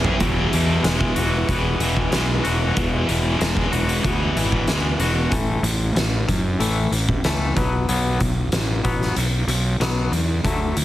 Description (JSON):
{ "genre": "quiet-loud alternative rock", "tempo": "94 BPM", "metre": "4/4", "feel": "straight", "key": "unclear", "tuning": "A4 = 439 Hz", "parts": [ { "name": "overdriven electric guitar", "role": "riff", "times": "0.0-5.3 s", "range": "E2 to G#4", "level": "-23 LUFS", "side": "equal", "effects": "harmonic tremolo" }, { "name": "fuzz fingered electric bass", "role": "bass", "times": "0.0-10.8 s", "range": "E1 to F#2", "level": "-22 LUFS", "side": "equal", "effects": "overdrive" }, { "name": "oversized low-tuned drum kit", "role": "drums", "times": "0.0-10.8 s", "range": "hi-hat, kick drum, snare drum, toms", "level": "-23 LUFS", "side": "equal", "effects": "none" }, { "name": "twangy electric guitar", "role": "arpeggios", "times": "0.2-10.8 s", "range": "E2 to F#4", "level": "-26 LUFS", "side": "left 3 dB", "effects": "harmonic tremolo" } ], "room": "little or no reverb", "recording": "heavily compressed radio sound, multiband compression", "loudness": "-18 LUFS", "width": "side -14 dB against mid", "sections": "0.2-5.3 A section; 5.3-10.8 B section", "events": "drum fill 0.0", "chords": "0.2 Eadd9; 5.3 A5; 7.6 B5", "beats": "| 0.21 0.85 1.49 2.13 | 2.77 3.41 4.05 4.69 | 5.33 5.97 6.61 7.25 | 7.89 8.53 9.17 9.81 | 10.45" }